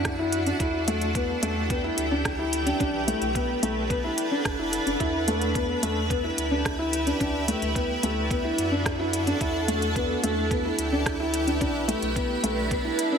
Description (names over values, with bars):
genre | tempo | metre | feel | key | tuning
piano and strings electronica | 109 BPM | 4/4 | straight | E minor | A4 = 435 Hz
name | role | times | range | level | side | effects
granular cloud pad | sustained chords | 0.0-13.2 s | D4 to G5 | -28 LUFS | right 1 dB | built-in reverb, sidechain pumping
felt-muted upright piano | riff | 0.0-13.2 s | A3 to E4 | -27 LUFS | left 2 dB | ping-pong delay
warm sub bass | bass | 0.0-12.9 s | F#1 to F#2 | -32 LUFS | right 1 dB | tube saturation, sidechain pumping
electronic kick drum | drums | 0.0-12.8 s | none | -31 LUFS | right 1 dB | none
organic electronic drum kit | drums | 0.1-13.1 s | hi-hat, rim click | -30 LUFS | equal | none
swell | sound effects | 12.9-13.2 s | none | -30 LUFS | right 8 dB | none
room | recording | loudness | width
moderate recital hall reverb, RT60 1.3 s, digital ambience | none | -23 LUFS | side -7 dB against mid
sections
0.0-13.2 A section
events
swell 12.9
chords
0.0 D; 0.6 Em; 2.8 Bm7; 5.0 Em; 7.2 D; 9.4 Em; 11.6 Bm7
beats
0.05 | 0.60 1.15 1.70 2.25 | 2.80 3.35 3.90 4.45 | 5.00 5.55 6.11 6.66 | 7.21 7.76 8.31 8.86 | 9.41 9.96 10.51 11.06 | 11.61 12.16 12.71